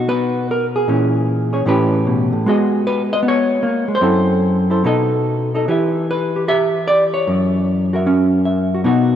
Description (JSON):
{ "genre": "solo jazz", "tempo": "151 BPM", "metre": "4/4", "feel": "swing 66% on 8ths, rubato", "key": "unclear", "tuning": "A4 = 440 Hz", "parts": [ { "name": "hollow-body jazz guitar", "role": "solo", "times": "0.0-9.2 s", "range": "F#2 to E5", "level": "-14 LUFS", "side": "equal", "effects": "none" } ], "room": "moderate lush hall reverb, RT60 3.0 s", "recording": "rough home demo mix", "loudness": "-14 LUFS", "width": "side -9 dB against mid", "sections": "0.0-9.2 A section", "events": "none", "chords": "0.0 B; 0.9 A#m7b5; 1.7 A9; 2.5 G#m11; 4.0 F#m7b5; 4.8 B7; 5.7 Em; 7.3 F#7" }